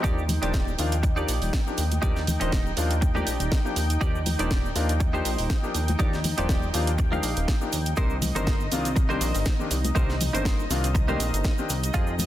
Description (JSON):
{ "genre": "nu-disco, nu disco", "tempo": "121 BPM", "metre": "4/4", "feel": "swing 55% on 16ths", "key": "Eb major", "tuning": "A4 = 440 Hz", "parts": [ { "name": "clear baby grand piano", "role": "accompaniment", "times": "0.0-12.1 s", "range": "Eb3 to C5", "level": "-31 LUFS", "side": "left 3 dB", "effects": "sidechain pumping, ping-pong delay" }, { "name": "lush unison pad", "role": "sustained chords", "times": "0.0-12.3 s", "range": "Eb4 to G5", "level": "-34 LUFS", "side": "equal", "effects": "chorus, sidechain pumping" }, { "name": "direct-recorded clean electric guitar", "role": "riff", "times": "0.0-12.1 s", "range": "Eb4 to F5", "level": "-33 LUFS", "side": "right 2 dB", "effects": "analog chorus, ping-pong delay" }, { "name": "chorused synth bass", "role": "bass", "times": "0.0-12.3 s", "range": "Eb1 to F2", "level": "-27 LUFS", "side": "equal", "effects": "none" }, { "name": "electronic kick drum", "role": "drums", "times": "0.0-12.1 s", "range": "none", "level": "-25 LUFS", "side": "equal", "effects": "none" }, { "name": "house drum kit", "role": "drums", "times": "0.0-12.3 s", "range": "cabasa, hi-hat, snare drum", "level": "-32 LUFS", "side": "right 2 dB", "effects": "none" }, { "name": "cabasa and congas", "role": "percussion", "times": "0.0-12.3 s", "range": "none", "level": "-34 LUFS", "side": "left 2 dB", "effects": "none" } ], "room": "light reverb, digital ambience", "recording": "dense, heavily limited modern master", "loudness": "-22 LUFS", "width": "side -13 dB against mid", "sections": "0.0-12.3 A section", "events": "none", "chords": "0.0 Ebmaj7; 8.0 Cm7", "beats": "| 0.04 0.54 1.03 1.53 | 2.03 2.52 3.02 3.51 | 4.01 4.50 5.00 5.50 | 5.99 6.49 6.99 7.48 | 7.98 8.47 8.97 9.46 | 9.96 10.46 10.95 11.45 | 11.94" }